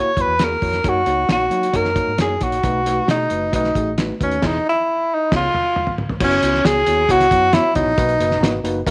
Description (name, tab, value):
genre	uptempo 1960s-style soul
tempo	135 BPM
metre	4/4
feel	straight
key	F# mixolydian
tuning	A4 = 440 Hz
part	breathy tenor saxophone	melody	0.0-8.6 s	C#4 to C#5	-20 LUFS	equal	none
part	mellow tine electric piano	accompaniment	0.0-8.9 s	B2 to D#5	-27 LUFS	equal	none
part	vintage muted fingered electric bass	bass	0.2-8.9 s	E1 to F#3	-29 LUFS	equal	none
part	cloth-damped thuddy drum kit	drums	0.2-8.9 s	crash cymbal, hi-hat, kick drum, snare drum, toms	-25 LUFS	equal	none
room	light reverb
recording	none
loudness	-18 LUFS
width	mono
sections	0.0-6.2 A section; 6.2-8.9 B section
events	drum fill 4.4-6.2; band accent 4.4-6.2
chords	0.0 F#7; 0.8 D#m7; 2.6 B7; 4.4 Emaj7; 5.3 C#7; 6.2 F#7sus4; 8.0 Bmaj7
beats	0.40 | 0.85 1.30 1.74 2.19 | 2.64 3.08 3.53 3.98 | 4.42 4.87 5.31 5.76 | 6.20 6.65 7.09 7.54 | 7.98 8.42 8.87